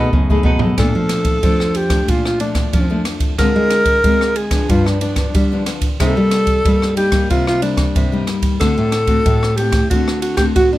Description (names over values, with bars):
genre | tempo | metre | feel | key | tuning
samba and choro | 92 BPM | 4/4 | straight | Bb major | A4 = 440 Hz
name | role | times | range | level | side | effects
breathy alto saxophone | melody | 0.0-10.7 s | D4 to Bb4 | -18 LUFS | equal | none
cavaquinho | accompaniment | 0.0-0.8 s | D#4 to D#5 | -24 LUFS | right 2 dB | none
nylon-string guitar | accompaniment | 0.0-10.8 s | F2 to G#4 | -21 LUFS | left 3 dB | none
nylon-string guitar | bass | 0.0-10.8 s | G2 to F#4 | -19 LUFS | equal | none
open jazz drum kit | drums | 0.1-10.7 s | kick drum, ride cymbal, rim click, toms | -18 LUFS | right 1 dB | none
room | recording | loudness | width
light reverb | none | -13 LUFS | side -15 dB against mid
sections
0.8-10.8 A section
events
drum fill 0.0-0.8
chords
0.0 B13; 0.8 Bbmaj7; 3.4 Dm7b5; 4.7 G7; 6.0 Cm7; 8.6 D7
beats
0.13 | 0.78 1.44 2.09 2.74 | 3.39 4.04 4.70 5.35 | 6.00 6.65 7.30 7.96 | 8.61 9.26 9.91 10.56